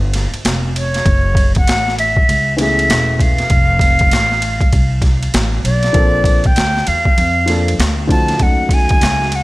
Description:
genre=hip hop, jazz-hop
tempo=98 BPM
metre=4/4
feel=swing 62% on 16ths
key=unclear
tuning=A4 = 435 Hz
part: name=upright bass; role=bass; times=0.0-9.4 s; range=E1 to E#2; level=-18 LUFS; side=equal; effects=none
part: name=boom bap sampler-style drum kit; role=drums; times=0.1-9.4 s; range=hi-hat, kick drum, ride cymbal, snare drum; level=-15 LUFS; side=equal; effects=overdrive
part: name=breathy bright concert flute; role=melody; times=0.8-9.4 s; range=C#5 to A5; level=-16 LUFS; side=equal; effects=slapback echo
part: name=dark baby grand piano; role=accompaniment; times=2.6-9.3 s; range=E3 to A4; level=-21 LUFS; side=left 1 dB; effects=none
room=little or no reverb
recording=none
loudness=-11 LUFS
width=side -19 dB against mid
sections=0.0-9.4 A section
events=none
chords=0.0 G7(no3); 1.1 F#m11; 3.5 F; 6.0 A#maj9; 8.4 D#m7b5

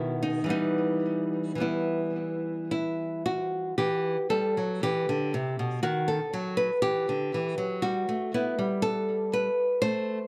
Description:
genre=classical, baroque-style dance for nylon-string guitar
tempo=54-61 BPM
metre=3/4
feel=rubato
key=E minor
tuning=A4 = 440 Hz
part: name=nylon-string guitar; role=solo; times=0.0-10.3 s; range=B2 to C5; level=-28 LUFS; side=equal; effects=tape echo
room=moderate studio reverb, RT60 0.5 s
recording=none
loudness=-28 LUFS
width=mono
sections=0.0-3.8 A section; 3.8-10.3 B section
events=none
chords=0.0 B; 0.5 Em; 5.8 D#dim; 6.8 Em

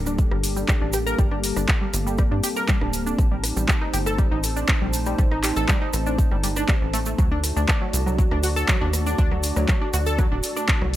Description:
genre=melodic techno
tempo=120 BPM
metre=4/4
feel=straight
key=G harmonic minor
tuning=A4 = 440 Hz
part: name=dark analog pad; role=sustained chords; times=0.0-11.0 s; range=G3 to D5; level=-32 LUFS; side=left 2 dB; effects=chorus, sidechain pumping
part: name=tight sequencer bass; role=bass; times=0.0-11.0 s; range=D1 to G2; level=-26 LUFS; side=equal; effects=sidechain pumping
part: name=warbly tape-like pad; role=texture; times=0.0-11.0 s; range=Bb3 to A5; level=-32 LUFS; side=right 1 dB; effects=chorus, built-in reverb, sidechain pumping
part: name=tight sequenced synth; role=arpeggios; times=0.1-10.9 s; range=F#3 to Bb4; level=-28 LUFS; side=equal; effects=chorus, sidechain pumping, dub echo
part: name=house drum kit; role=drums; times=0.1-11.0 s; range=handclaps, hi-hat, rim click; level=-27 LUFS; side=equal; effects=studio reverb, sidechain pumping on hats
part: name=tube shaker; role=percussion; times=0.1-10.8 s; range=none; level=-33 LUFS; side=right 4 dB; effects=none
part: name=electronic kick drum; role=drums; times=0.2-10.8 s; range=none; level=-21 LUFS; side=equal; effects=studio reverb
room=digital ambience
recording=none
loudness=-19 LUFS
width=side -14 dB against mid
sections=0.0-11.0 A section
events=none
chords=0.0 Gmadd9; 3.2 Adim; 7.2 D

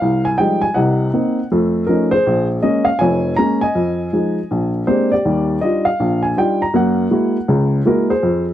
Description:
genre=solo jazz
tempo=160 BPM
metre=4/4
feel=swing 63% on 8ths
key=unclear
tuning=A4 = 441 Hz
part: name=warm upright piano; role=solo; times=0.0-8.5 s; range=F1 to Bb5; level=-14 LUFS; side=equal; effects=none
room=light reverb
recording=dry, close 1970s-style studio recording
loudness=-14 LUFS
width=side -12 dB against mid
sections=0.0-8.5 A section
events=none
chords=0.0 Fm9; 0.8 Cm7b5; 1.5 F7b13; 2.3 Bbm7; 3.7 Fm7; 4.5 Bb13; 5.2 Ebmaj9; 6.7 Gb9

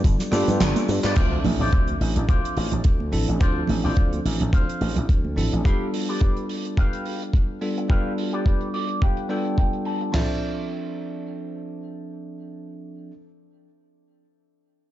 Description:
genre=nu-disco, nu disco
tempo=107 BPM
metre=4/4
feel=swing 55% on 16ths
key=D dorian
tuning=A4 = 439 Hz
part: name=bell-like tine electric piano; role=accompaniment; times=0.0-13.1 s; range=F3 to E5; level=-28 LUFS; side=equal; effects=vintage 12-bit sampler grit, sidechain pumping, ping-pong delay
part: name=slap bass with an envelope filter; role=bass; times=0.0-5.6 s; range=G1 to G2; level=-24 LUFS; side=equal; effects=none
part: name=damped 70s drum kit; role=drums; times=0.0-10.1 s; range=crash cymbal, handclaps, hi-hat, rim click, shaker, snare drum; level=-31 LUFS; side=right 2 dB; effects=low-pass filter on hats, studio reverb, low-pass filter on cymbals, low-pass filter on snare, low-pass filter on perc, low-pass filter on room
part: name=dusty soul sampler-style drum kit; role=drums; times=0.0-10.3 s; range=crash cymbal, kick drum, snare drum, toms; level=-20 LUFS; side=equal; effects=studio reverb
part: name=electric guitar with an envelope filter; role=riff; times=0.3-13.1 s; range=F4 to A5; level=-32 LUFS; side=left 1 dB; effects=lush chorus, low-pass filter, ping-pong delay
part: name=congas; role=percussion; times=0.3-5.3 s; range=none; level=-31 LUFS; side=right 4 dB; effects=none
part: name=impact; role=sound effects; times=1.2-3.4 s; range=none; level=-31 LUFS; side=equal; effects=none
room=light reverb, small room ambience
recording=dark, warm production, nothing above 7.6 kHz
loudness=-20 LUFS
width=side -13 dB against mid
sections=0.0-1.2 A section; 1.2-10.1 B section; 10.1-12.4 C section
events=drop 0.0-1.2; kick drops out 0.6-1.2; drum fill 0.6-1.2; impact 1.2-3.4; filter sweep on clean electric guitar 1.2-10.1; clean electric guitar fill 8.5-10.1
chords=0.0 G7; 1.2 Dm7; 5.7 G7; 10.1 Dm7

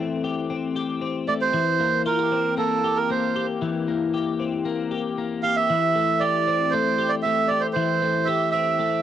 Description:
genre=indie pop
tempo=116 BPM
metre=4/4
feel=straight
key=C mixolydian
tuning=A4 = 440 Hz
part: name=twelve-string electric guitar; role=arpeggios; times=0.0-9.0 s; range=E3 to G4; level=-24 LUFS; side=left 5 dB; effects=analog chorus, cassette tape, tape echo
part: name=melodica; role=melody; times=1.3-9.0 s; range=A4 to F5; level=-21 LUFS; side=right 6 dB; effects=cassette tape
room=light reverb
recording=home recording on cassette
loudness=-21 LUFS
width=side -10 dB against mid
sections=0.0-1.5 A section; 1.5-9.0 B section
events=none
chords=0.0 Am7; 1.5 C7; 5.7 Am7

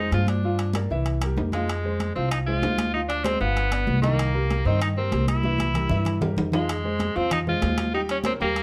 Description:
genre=latin, salsa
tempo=192 BPM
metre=4/4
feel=straight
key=F minor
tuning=A4 = 440 Hz
part: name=bright tenor saxophone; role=melody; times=0.0-8.6 s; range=Ab3 to F4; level=-30 LUFS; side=equal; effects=plate reverb
part: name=clear concert grand piano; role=accompaniment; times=0.0-8.6 s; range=Eb3 to G5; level=-32 LUFS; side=equal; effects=none
part: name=upright bass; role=bass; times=0.0-8.6 s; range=G1 to G2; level=-28 LUFS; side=equal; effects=none
part: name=congas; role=percussion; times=0.1-8.6 s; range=none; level=-33 LUFS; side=equal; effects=none
part: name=timbales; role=percussion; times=0.1-8.6 s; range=none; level=-34 LUFS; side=equal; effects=none
room=moderate studio ambience, RT60 0.5 s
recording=none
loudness=-24 LUFS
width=mono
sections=0.0-6.7 A section; 6.7-8.6 A section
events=drum fill 5.4-6.7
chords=0.4 Gm7; 1.1 C7; 1.7 Fm; 2.9 Dm7b5; 3.6 G7; 4.2 Cm7; 5.4 C7; 6.7 Fm7; 7.9 Eb7

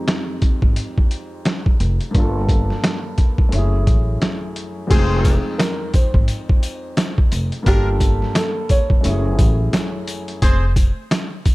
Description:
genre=hip hop, boom-bap hip-hop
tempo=87 BPM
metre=4/4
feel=swing 60% on 16ths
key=unclear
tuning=A4 = 441 Hz
part: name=dark grand piano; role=accompaniment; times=0.0-10.4 s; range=F2 to G5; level=-26 LUFS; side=equal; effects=high-pass filter, low-pass filter
part: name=trip hop sampler-style drum kit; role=drums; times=0.1-11.5 s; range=crash cymbal, hi-hat, kick drum, snare drum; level=-17 LUFS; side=equal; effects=none
part: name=upright bass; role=bass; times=0.6-10.9 s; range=F1 to A1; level=-20 LUFS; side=equal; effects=none
part: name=dark upright piano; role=melody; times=4.9-9.9 s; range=G4 to Db5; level=-25 LUFS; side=equal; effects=high-pass filter, low-pass filter, slapback echo
part: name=clear horn section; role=stabs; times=4.9-10.6 s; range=C4 to C5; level=-27 LUFS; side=left 1 dB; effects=high-pass filter, low-pass filter, slapback echo
part: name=sleigh bells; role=percussion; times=4.9-11.5 s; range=none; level=-38 LUFS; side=left 4 dB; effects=none
room=small room ambience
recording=dark, warm production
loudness=-16 LUFS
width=side -20 dB against mid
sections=0.0-4.9 A section; 4.9-11.5 B section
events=none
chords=0.0 Fm9; 2.1 Gm9; 3.5 Gbm9; 4.9 Fm9; 7.7 Gm9; 9.0 Gbm9; 10.4 Fm

